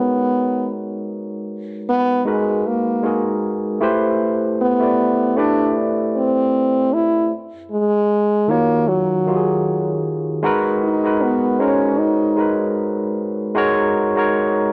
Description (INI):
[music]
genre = R&B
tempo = 77 BPM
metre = 4/4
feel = swing 56% on 16ths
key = G# minor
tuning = A4 = 442 Hz
[part]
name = warm French horn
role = melody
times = 0.0-12.8 s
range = F#3 to E4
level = -20 LUFS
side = equal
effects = none
[part]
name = barky tine electric piano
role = accompaniment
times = 0.0-14.7 s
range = D#3 to D5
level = -21 LUFS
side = equal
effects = overdrive
[sound]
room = moderate echo chamber reverb, RT60 2.0 s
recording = worn, warbling old tape, cassette tape, warbly pitch drift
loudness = -19 LUFS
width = mono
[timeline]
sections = 0.0-10.4 A section; 10.4-14.7 B section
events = none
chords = 0.0 G#m9; 3.8 Am9; 7.3 D#m9; 10.4 G#m9